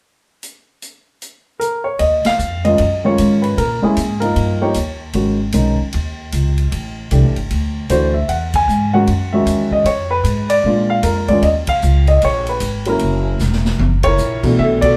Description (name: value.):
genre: jazz piano trio.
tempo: 153 BPM.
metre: 4/4.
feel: swing 64% on 8ths.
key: Eb minor.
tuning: A4 = 440 Hz.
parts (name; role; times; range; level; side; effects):
swinging big-band drum kit; drums; 0.4-14.9 s; crash cymbal, hi-hat, kick drum, ride cymbal, snare drum, toms; -29 LUFS; equal; none.
dark baby grand piano; melody; 1.6-15.0 s; Cb3 to G#5; -18 LUFS; equal; none.
upright bass; bass; 2.0-15.0 s; Fb1 to Bb2; -20 LUFS; equal; none.
room: moderate studio reverb, RT60 0.7 s.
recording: heard from further back in the room.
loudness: -16 LUFS.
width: mono.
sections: 0.4-2.0 A section; 2.0-14.6 B section.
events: band accent 2.2, 8.5, 11.6, 14.0, 14.8; drum fill 13.4-14.2.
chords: 0.4 N.C.; 2.0 Ebm7; 3.6 Bb7(no3); 4.4 Eb7; 5.2 Abm; 6.7 Am7; 7.5 Dadd9; 8.3 Emaj9; 9.9 Fdim; 10.6 Bb7; 11.4 Eb7(no3); 13.0 Gb7.